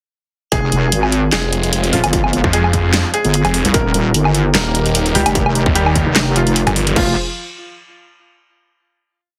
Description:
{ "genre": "heavy wobble dubstep", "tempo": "149 BPM", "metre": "4/4", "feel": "swing 54% on 16ths, half-time", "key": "F minor", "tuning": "A4 = 440 Hz", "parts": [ { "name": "clear baby grand piano", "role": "melody", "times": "0.5-7.1 s", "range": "F3 to Bb4", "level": "-24 LUFS", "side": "equal", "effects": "delay" }, { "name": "supersaw chords", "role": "sustained chords", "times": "0.5-7.1 s", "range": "Eb3 to C5", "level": "-27 LUFS", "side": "equal", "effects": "sidechain pumping, low-pass filter" }, { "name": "wobble bass", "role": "bass", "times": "0.5-7.2 s", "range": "Eb1 to Db2", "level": "-18 LUFS", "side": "equal", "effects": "chorus, overdrive" }, { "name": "dubstep drum kit", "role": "drums", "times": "0.5-7.0 s", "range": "crash cymbal, handclaps, hi-hat, snare drum, woodblock", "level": "-20 LUFS", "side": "equal", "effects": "none" }, { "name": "electronic kick drum", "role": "drums", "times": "0.5-7.0 s", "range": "none", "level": "-22 LUFS", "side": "equal", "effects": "distortion" }, { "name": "snarling distorted saw bass", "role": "bass", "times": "1.3-6.9 s", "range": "Eb1 to F2", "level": "-19 LUFS", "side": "equal", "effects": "distortion, overdrive" } ], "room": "light reverb", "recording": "heavily compressed radio sound, multiband compression", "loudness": "-15 LUFS", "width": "mono", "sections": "0.5-7.0 drop; 7.0-8.6 final chord", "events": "drop 0.5-7.0", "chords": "0.5 Fm; 3.7 Eb; 7.0 Fm", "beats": "| 0.52 0.92 1.32 1.73 | 2.13 2.53 2.94 3.34 | 3.74 4.14 4.55 4.95 | 5.35 5.75 6.16 6.56 | 6.96" }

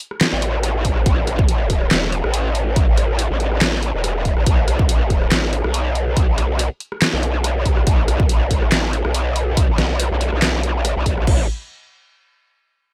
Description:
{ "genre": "heavy wobble dubstep", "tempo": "141 BPM", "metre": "4/4", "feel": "swing 54% on 16ths, half-time", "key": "unclear", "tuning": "A4 = 440 Hz", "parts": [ { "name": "dubstep drum kit", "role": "drums", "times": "0.0-11.4 s", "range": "crash cymbal, handclaps, hi-hat, rim click, snare drum", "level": "-23 LUFS", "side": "equal", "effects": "none" }, { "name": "growl bass", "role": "bass", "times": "0.3-11.5 s", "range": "E1 to B1", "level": "-22 LUFS", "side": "equal", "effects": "chorus, overdrive" }, { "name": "electronic kick drum", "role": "drums", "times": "0.8-11.4 s", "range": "none", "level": "-19 LUFS", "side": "equal", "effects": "none" } ], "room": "little or no reverb", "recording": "none", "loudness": "-18 LUFS", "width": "mono", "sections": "0.0-11.3 A section; 11.3-12.9 B section", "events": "drop 0.0-11.3", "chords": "none", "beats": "0.21 0.63 | 1.06 1.49 1.91 2.34 | 2.76 3.19 3.61 4.04 | 4.46 4.89 5.32 5.74 | 6.17 6.59 7.02 7.44 | 7.87 8.29 8.72 9.14 | 9.57 10.00 10.42 10.85 | 11.27" }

